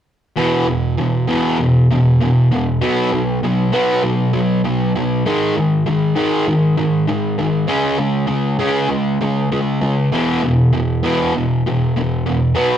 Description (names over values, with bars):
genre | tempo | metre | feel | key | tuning
rock | 98 BPM | 4/4 | straight | E major | A4 = 440 Hz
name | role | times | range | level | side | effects
fuzz guitar | solo | 0.4-12.8 s | E2 to C#4 | -14 LUFS | equal | distortion
room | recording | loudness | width
wet booth ambience, RT60 0.2 s | rough rehearsal-room recording, tube saturation | -14 LUFS | side -10 dB against mid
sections
0.4-12.8 A section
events
none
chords
0.4 E5; 2.8 B5; 5.2 G#5; 7.7 C#5; 10.1 E5